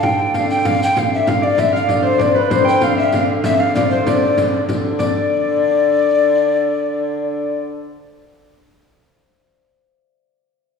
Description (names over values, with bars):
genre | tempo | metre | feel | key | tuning
medieval dance | 129 BPM (dotted quarters) | 6/8 | straight | D minor | A4 = 440 Hz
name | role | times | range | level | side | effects
breathy mellow alto recorder | melody | 0.0-7.6 s | B4 to G5 | -17 LUFS | left 3 dB | none
dark hurdy-gurdy | drone | 0.0-7.6 s | D3 | -23 LUFS | equal | none
frame drum | percussion | 0.0-5.1 s | none | -22 LUFS | equal | none
riq | percussion | 0.3-5.1 s | none | -23 LUFS | left 4 dB | none
concert harp | second line | 1.3-8.3 s | B4 to G5 | -21 LUFS | right 1 dB | none
room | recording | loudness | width
wet scoring stage reverb, RT60 1.7 s | recorded in a church or concert hall, small room reverb | -14 LUFS | side -5 dB against mid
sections
0.0-5.0 A section; 5.0-6.8 B section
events
none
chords
none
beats
| 0.34 0.80 | 1.27 1.73 | 2.20 2.66 | 3.13 3.59 | 4.06 4.52 | 4.99 5.45 | 5.92 6.38